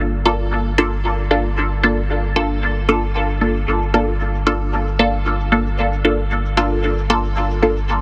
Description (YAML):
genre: dub techno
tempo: 114 BPM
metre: 4/4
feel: swing 56% on 16ths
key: G minor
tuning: A4 = 441 Hz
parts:
  - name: pure sine sub bass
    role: bass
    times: 0.0-8.0 s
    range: G1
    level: -23 LUFS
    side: equal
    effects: tube saturation
  - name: cabasa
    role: drums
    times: 0.1-8.0 s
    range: none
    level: -52 LUFS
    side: equal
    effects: none
  - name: filtered dub chord stab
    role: stabs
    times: 0.3-7.8 s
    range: Bb3 to A4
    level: -20 LUFS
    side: equal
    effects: phaser, dub echo
room: light reverb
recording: heavily compressed radio sound, multiband compression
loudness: -18 LUFS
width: mono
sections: 0.0-8.0 A section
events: none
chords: 0.0 Gm9